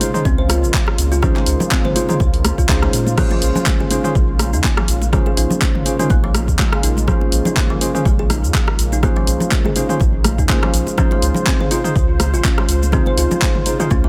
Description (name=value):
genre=afro house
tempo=123 BPM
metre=4/4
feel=swing 55% on 16ths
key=Bb minor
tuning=A4 = 439 Hz
part: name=warm analog pad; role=sustained chords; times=0.0-14.1 s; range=Db3 to C5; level=-29 LUFS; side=equal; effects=chorus, sidechain pumping
part: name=tine electric piano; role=stabs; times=0.0-13.9 s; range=Db4 to C5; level=-26 LUFS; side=equal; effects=sidechain pumping, tape echo
part: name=deep house drum kit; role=drums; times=0.0-14.0 s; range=crash cymbal, handclaps, hi-hat, rim click, shaker, toms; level=-24 LUFS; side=equal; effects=none
part: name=congas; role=percussion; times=0.0-14.0 s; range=none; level=-27 LUFS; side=equal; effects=none
part: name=kalimba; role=arpeggios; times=0.3-14.1 s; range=F3 to C5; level=-27 LUFS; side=equal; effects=sidechain pumping, tape echo
part: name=warm sub bass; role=bass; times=0.3-14.1 s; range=Ab1 to Bb2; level=-21 LUFS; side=equal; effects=sidechain pumping
part: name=electronic kick drum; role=drums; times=0.3-14.0 s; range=none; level=-20 LUFS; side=equal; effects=none
room=little or no reverb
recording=none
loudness=-16 LUFS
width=mono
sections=0.0-14.1 A section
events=none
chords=0.0 Bbm7; 11.0 Dbmaj7